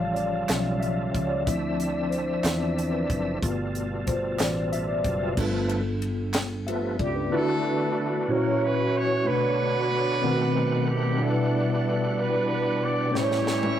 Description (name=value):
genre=slow gospel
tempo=62 BPM (dotted quarters)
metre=6/8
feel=straight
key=D major from 7.3 s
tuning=A4 = 440 Hz
part: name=mellow tine electric piano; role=accompaniment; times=0.0-13.8 s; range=G2 to A5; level=-26 LUFS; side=left 1 dB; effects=medium stereo tremolo
part: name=overdriven tonewheel organ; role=sustained chords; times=0.0-13.8 s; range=B2 to F#5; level=-29 LUFS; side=right 1 dB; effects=slow rotary speaker, chorus vibrato
part: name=fingered electric bass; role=bass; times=0.0-7.3 s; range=F#1 to E2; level=-31 LUFS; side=equal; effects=none
part: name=tight funk drum kit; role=drums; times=0.2-7.1, 13.2-13.8 s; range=crash cymbal, hi-hat, kick drum, ride cymbal, snare drum, toms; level=-29 LUFS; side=equal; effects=none
part: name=group handclap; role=percussion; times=0.5-6.6 s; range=none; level=-35 LUFS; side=right 2 dB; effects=none
part: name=mellow horn section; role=melody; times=7.0-13.8 s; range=G3 to D5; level=-28 LUFS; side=right 1 dB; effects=none
room=wet studio ambience, RT60 0.5 s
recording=rough rehearsal-room recording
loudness=-23 LUFS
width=side -10 dB against mid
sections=0.0-5.4 A section; 5.4-7.3 B section; 7.3-13.8 C section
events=tine electric piano solo 0.0-5.4; tonewheel organ solo 5.4-7.3; drum fill 13.1-13.8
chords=0.0 A7b13; 1.5 Dm9; 3.4 G9; 7.3 D69; 8.3 F#7; 9.3 Bm9; 10.2 B7b9; 11.2 Em9/B; 13.1 A7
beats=0.49 | 1.47 2.44 | 3.42 4.39 | 5.37 6.34 | 7.32 8.29 | 9.26 10.23 | 11.20 12.17 | 13.14